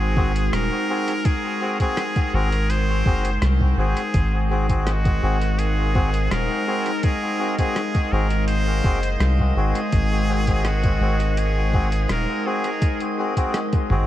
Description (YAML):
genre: ambient dub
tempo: 83 BPM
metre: 4/4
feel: straight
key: Ab mixolydian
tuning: A4 = 440 Hz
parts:
  - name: trumpet with straight mute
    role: melody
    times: 0.0-13.2 s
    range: Gb4 to C5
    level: -27 LUFS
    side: equal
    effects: dub echo
  - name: warbly tape-like pad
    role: sustained chords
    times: 0.0-14.1 s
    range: Ab3 to F5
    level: -28 LUFS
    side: left 1 dB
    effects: chorus, built-in reverb, phaser
  - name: soft dub sub bass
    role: bass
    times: 0.0-14.1 s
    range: Eb1 to C2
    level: -21 LUFS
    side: equal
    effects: none
  - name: melodica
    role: stabs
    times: 0.2-14.1 s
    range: C4 to Ab4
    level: -28 LUFS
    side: left 2 dB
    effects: dub echo
  - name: electronic kick drum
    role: drums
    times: 0.2-13.9 s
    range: none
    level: -21 LUFS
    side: equal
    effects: none
  - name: lo-fi sampler-style drum kit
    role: drums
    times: 0.4-14.1 s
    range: hi-hat, rim click, toms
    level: -33 LUFS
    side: equal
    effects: overdrive, dub echo
  - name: drifting glass-harmonics texture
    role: texture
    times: 4.5-14.1 s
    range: Eb5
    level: -35 LUFS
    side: right 2 dB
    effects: chorus, built-in reverb
room: light reverb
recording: vinyl crackle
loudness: -19 LUFS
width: side -13 dB against mid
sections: 0.0-14.1 A section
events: none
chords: 0.0 Ab7